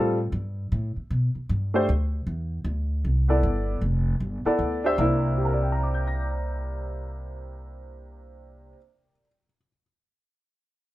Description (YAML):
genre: jazz piano trio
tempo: 155 BPM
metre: 4/4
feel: swing 64% on 8ths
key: C mixolydian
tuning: A4 = 440 Hz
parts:
  - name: clear upright piano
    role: melody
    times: 0.0-9.8 s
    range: C3 to Bb6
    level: -25 LUFS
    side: equal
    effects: none
  - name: upright bass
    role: bass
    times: 0.0-8.7 s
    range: F1 to B2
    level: -26 LUFS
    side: equal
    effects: none
room: light reverb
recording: none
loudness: -23 LUFS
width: side -16 dB against mid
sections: 0.0-5.0 A section; 5.0-8.1 B section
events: none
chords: 0.3 G; 1.9 Dsus2; 3.4 G7; 5.0 C9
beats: | 0.33 0.71 1.10 1.49 | 1.88 2.27 2.65 3.04 | 3.43 3.82 4.20 4.59 | 4.98 5.37 5.75 6.14 | 6.53 6.92 7.31 7.69